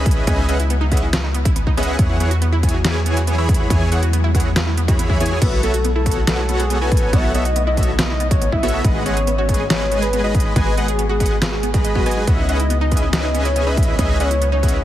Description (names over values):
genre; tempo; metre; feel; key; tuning
future bass; 140 BPM; 4/4; half-time; C# minor; A4 = 440 Hz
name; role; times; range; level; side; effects
shimmering ambient pad; sustained chords; 0.0-14.8 s; B2 to F#4; -30 LUFS; left 2 dB; chorus, built-in reverb, sidechain pumping
supersaw chords; riff; 0.0-14.8 s; E3 to B5; -23 LUFS; equal; cassette tape, sidechain pumping, ping-pong delay
warm 808-style bass; bass; 0.0-14.8 s; G#1 to E2; -20 LUFS; equal; sidechain pumping
wide unison pluck; arpeggios; 0.1-14.8 s; B3 to D#5; -28 LUFS; right 3 dB; sidechain pumping, ping-pong delay
dubstep drum kit; drums; 0.1-14.8 s; crash cymbal, hi-hat, snare drum; -24 LUFS; equal; none
electronic kick drum; drums; 0.1-14.7 s; none; -18 LUFS; equal; none
soft octave-layered synth lead; melody; 5.4-14.8 s; F#4 to E5; -23 LUFS; left 2 dB; chorus, sidechain pumping, ping-pong delay
room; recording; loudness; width
digital ambience; heavily compressed radio sound, multiband compression; -15 LUFS; side -13 dB against mid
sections
0.0-14.8 A section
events
none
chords
0.0 C#m11; 2.0 E69; 5.4 B9sus4; 8.8 G#m7; 12.3 C#m11